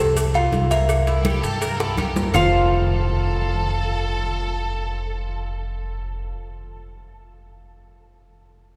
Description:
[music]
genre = latin, Cuban son and guajira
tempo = 165 BPM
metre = 4/4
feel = straight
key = F major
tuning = A4 = 441 Hz
[part]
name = kalimba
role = melody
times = 0.0-6.3 s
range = A4 to F5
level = -28 LUFS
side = equal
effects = none
[part]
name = Cuban tres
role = arpeggios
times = 0.0-6.3 s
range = Bb3 to F5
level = -28 LUFS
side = equal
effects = none
[part]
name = upright bass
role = bass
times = 0.0-6.3 s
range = F1 to G2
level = -26 LUFS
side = equal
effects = none
[part]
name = congas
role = percussion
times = 0.2-2.4 s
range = none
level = -32 LUFS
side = equal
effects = none
[part]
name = cowbell and bongos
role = percussion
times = 0.2-2.4 s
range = none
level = -34 LUFS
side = equal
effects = none
[part]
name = maracas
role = percussion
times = 0.2-2.4 s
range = none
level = -39 LUFS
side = equal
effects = none
[part]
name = claves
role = percussion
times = 0.3-2.4 s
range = none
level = -39 LUFS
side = equal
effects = none
[part]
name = clear studio violin section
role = second line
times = 1.1-6.0 s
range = E4 to Bb4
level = -33 LUFS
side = equal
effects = none
[sound]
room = wet cathedral reverb, RT60 6.6 s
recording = recorded in a church or concert hall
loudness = -22 LUFS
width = mono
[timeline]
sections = 0.0-2.3 A section; 2.3-5.2 B section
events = drum fill 1.8-2.3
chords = 0.0 F; 0.9 C7; 2.3 F

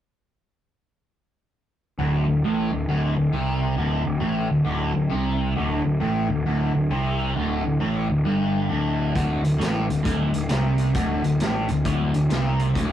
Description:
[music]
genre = blues rock power trio and southern rock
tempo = 134 BPM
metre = 4/4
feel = swing 64% on 8ths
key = unclear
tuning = A4 = 442 Hz
[part]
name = overdriven electric guitar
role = riff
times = 2.0-12.9 s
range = D2 to C3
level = -22 LUFS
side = equal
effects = phaser
[part]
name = fuzz picked electric bass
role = bass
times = 2.0-12.9 s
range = D1 to C2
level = -26 LUFS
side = equal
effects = overdrive
[part]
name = vintage drum kit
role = drums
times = 9.2-12.9 s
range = hi-hat, kick drum, snare drum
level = -28 LUFS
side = equal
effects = none
[sound]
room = wet studio reverb, RT60 0.6 s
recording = rough rehearsal-room recording, warm saturation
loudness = -20 LUFS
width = side -11 dB against mid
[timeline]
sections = 2.0-12.9 A section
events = none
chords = 2.0 D5

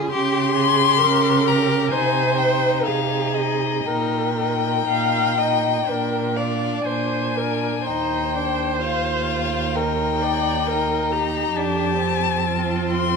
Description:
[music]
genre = classical, slow romantic movement for string quartet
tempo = 58-69 BPM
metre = 4/4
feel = rubato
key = unclear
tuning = A4 = 440 Hz
[part]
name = clear violin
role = second line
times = 0.0-13.2 s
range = C4 to Ab4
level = -26 LUFS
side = left 4 dB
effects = none
[part]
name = rich viola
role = accompaniment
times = 0.0-13.2 s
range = F4 to F5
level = -24 LUFS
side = right 3 dB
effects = none
[part]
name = rich violin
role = melody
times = 0.1-13.2 s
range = Eb5 to C6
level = -23 LUFS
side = left 11 dB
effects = none
[part]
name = rich cello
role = bass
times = 0.1-13.2 s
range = Eb2 to Db3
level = -24 LUFS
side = right 6 dB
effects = none
[sound]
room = moderate recital hall reverb, RT60 1.5 s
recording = none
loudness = -18 LUFS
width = side -4 dB against mid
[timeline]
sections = 0.0-13.2 A section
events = none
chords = 0.1 Bbm13/Db; 1.9 Ab/C; 3.9 Eb/Bb; 5.9 Bb; 7.9 Ebmaj7; 11.6 F

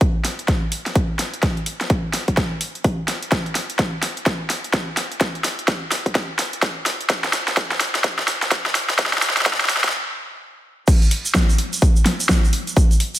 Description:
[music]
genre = house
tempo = 127 BPM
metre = 4/4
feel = swing 61% on 16ths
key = none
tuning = none
[part]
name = big-room dance drum kit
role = drums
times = 0.0-13.2 s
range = crash cymbal, hi-hat, snare drum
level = -21 LUFS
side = equal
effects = overdrive, high-pass filter on hats, studio reverb, high-pass filter on snare, high-pass filter on cymbals
[part]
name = electronic kick drum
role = drums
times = 0.0-12.9 s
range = none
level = -18 LUFS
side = equal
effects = overdrive, studio reverb
[part]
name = tube shaker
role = percussion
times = 10.9-13.2 s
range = none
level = -26 LUFS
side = right 3 dB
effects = none
[sound]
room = light reverb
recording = high-pass filter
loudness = -18 LUFS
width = side -13 dB against mid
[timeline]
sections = 0.0-10.9 A section; 10.9-13.2 B section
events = build-up 0.0-10.9; drum fill 0.0-9.9; filter sweep 0.0-10.9; stop 9.9-10.9; drop 10.9-13.2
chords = none

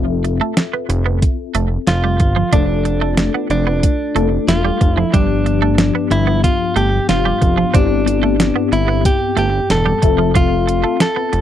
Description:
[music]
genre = 1980s-style pop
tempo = 92 BPM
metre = 4/4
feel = straight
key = G mixolydian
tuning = A4 = 440 Hz
[part]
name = mellow tine electric piano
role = accompaniment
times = 0.0-11.4 s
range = G2 to E5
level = -21 LUFS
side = left 13 dB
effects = phaser
[part]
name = twelve-string electric guitar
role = riff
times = 0.0-11.4 s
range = F3 to D4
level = -22 LUFS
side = right 9 dB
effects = analog chorus, slapback echo
[part]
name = fat analog bass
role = bass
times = 0.0-11.4 s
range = E1 to G1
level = -18 LUFS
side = right 1 dB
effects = none
[part]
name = clean 12-bit digital drum machine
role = drums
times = 0.2-11.4 s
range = hi-hat, kick drum, snare drum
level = -16 LUFS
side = right 1 dB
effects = none
[part]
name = direct-recorded clean electric guitar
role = melody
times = 1.9-11.4 s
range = D4 to A4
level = -19 LUFS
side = right 1 dB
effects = slapback echo
[sound]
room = little or no reverb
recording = dry, close 1970s-style studio recording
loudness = -13 LUFS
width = side -11 dB against mid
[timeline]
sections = 0.0-11.4 A section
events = none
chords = 0.0 Fmaj7; 2.5 Dm/F; 5.1 G7; 7.7 Cmaj7/G; 10.0 Fmaj7

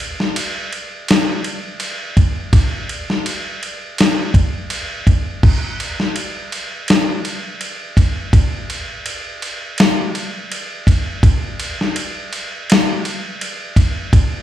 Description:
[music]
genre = metal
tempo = 83 BPM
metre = 4/4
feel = straight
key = none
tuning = none
[part]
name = dusty soul sampler-style drum kit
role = drums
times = 0.0-14.3 s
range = crash cymbal, kick drum, ride cymbal, snare drum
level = -16 LUFS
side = equal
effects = none
[sound]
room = moderate large studio reverb, RT60 1.5 s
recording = band playing live in one room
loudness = -16 LUFS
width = side -12 dB against mid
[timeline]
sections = 0.0-14.4 A section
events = none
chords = none

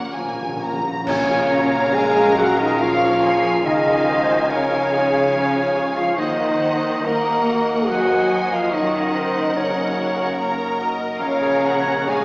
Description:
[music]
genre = cinematic, emotional film score for orchestra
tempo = 71 BPM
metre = 3/4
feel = uneven beats, rubato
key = Bb minor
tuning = A4 = 440 Hz
[part]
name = bright symphonic violin section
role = melody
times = 0.0-12.2 s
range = F5 to Bb5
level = -27 LUFS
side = equal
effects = none
[part]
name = clear symphonic violin section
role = second line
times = 0.0-12.2 s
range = Bb4 to Gb5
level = -29 LUFS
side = equal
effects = none
[part]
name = clear concert grand piano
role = accompaniment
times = 0.0-12.2 s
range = Bb1 to C5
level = -27 LUFS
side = equal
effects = none
[part]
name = rich symphonic viola section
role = accompaniment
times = 0.0-12.2 s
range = Bb3 to Eb5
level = -28 LUFS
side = equal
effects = none
[part]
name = concert harp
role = arpeggios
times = 0.0-12.2 s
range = Gb2 to Eb5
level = -32 LUFS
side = equal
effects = none
[part]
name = rich symphonic double bass section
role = bass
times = 0.0-12.2 s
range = Bb1 to Gb2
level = -36 LUFS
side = equal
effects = none
[part]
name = warm studio cello section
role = bass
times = 0.0-12.2 s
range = Bb2 to Bb3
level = -25 LUFS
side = equal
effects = none
[part]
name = timpani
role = percussion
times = 0.0-2.3 s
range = Bb2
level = -32 LUFS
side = equal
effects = none
[part]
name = clear clarinet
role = second line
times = 1.1-12.2 s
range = Db5 to Bb5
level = -25 LUFS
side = equal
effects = none
[part]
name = hollow concert flute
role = second line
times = 1.1-12.2 s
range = Db5 to Bb5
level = -25 LUFS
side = equal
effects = none
[part]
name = mellow French horn section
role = sustained chords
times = 1.1-12.2 s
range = Db4 to Bb4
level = -22 LUFS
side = equal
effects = none
[part]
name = clash cymbals and concert bass drum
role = percussion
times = 1.1-2.8 s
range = none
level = -33 LUFS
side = equal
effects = none
[sound]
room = wet scoring stage reverb, RT60 1.7 s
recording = heard from further back in the room, small speaker sound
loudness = -16 LUFS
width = side -29 dB against mid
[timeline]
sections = 0.0-1.1 A section; 1.1-12.2 B section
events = timpani fill 0.0-1.1; band accent 1.1-1.9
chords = 0.0 Bbm; 1.1 Bbm7; 3.6 Dbadd9; 6.2 Ebm7; 8.7 Gb6; 11.2 Bbm7

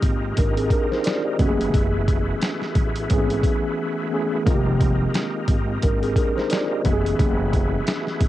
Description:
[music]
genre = hip hop, boom-bap hip-hop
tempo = 88 BPM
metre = 4/4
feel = swing 57% on 16ths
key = unclear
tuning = A4 = 440 Hz
[part]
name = mellow tine electric piano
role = accompaniment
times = 0.0-8.3 s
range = Eb3 to Eb5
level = -24 LUFS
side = equal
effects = medium stereo tremolo, high-pass filter, low-pass filter
[part]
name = overdriven tonewheel organ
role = sustained chords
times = 0.0-8.3 s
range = Ab3 to Cb5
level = -31 LUFS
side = equal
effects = chorus vibrato, fast rotary speaker, high-pass filter, low-pass filter
[part]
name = upright bass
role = bass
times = 0.0-8.3 s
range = F1 to A1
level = -24 LUFS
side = equal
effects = none
[part]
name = boom bap sampler-style drum kit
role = drums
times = 0.0-8.3 s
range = hi-hat, kick drum, snare drum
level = -22 LUFS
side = equal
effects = none
[sound]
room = little or no reverb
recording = home recording on cassette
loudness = -19 LUFS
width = side -14 dB against mid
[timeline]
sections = 0.0-8.3 A section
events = break 3.8-4.5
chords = 0.0 Fm11; 1.4 Gbm11; 4.5 Fm11; 6.9 Gbm11

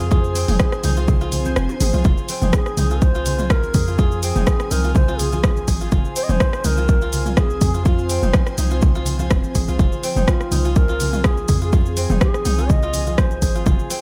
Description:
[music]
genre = afro house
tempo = 124 BPM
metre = 4/4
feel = swing 54% on 16ths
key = F minor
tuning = A4 = 440 Hz
[part]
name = bass bansuri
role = melody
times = 0.0-13.7 s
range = F4 to Eb5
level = -29 LUFS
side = equal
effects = delay
[part]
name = ethereal airy pad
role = sustained chords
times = 0.0-14.0 s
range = F3 to Ab5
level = -32 LUFS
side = equal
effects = ensemble chorus, built-in reverb, phaser, sidechain pumping
[part]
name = kora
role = arpeggios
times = 0.0-14.0 s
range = C4 to C5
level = -32 LUFS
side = equal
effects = sidechain pumping, delay
[part]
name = warm 808-style bass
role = bass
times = 0.0-13.8 s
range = F1 to F2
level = -24 LUFS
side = equal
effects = sidechain pumping
[part]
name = deep house drum kit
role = drums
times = 0.0-14.0 s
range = hi-hat, rim click, shaker, toms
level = -27 LUFS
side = equal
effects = overdrive, studio reverb
[part]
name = electronic kick drum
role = drums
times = 0.1-13.8 s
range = none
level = -20 LUFS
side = equal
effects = overdrive, studio reverb
[part]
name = congas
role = percussion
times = 0.1-14.0 s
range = none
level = -30 LUFS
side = equal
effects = none
[sound]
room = digital ambience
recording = none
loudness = -18 LUFS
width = mono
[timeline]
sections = 0.0-14.0 A section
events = kick drops out 1.6-2.1; drum fill 1.7-2.1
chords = 0.0 Fm7

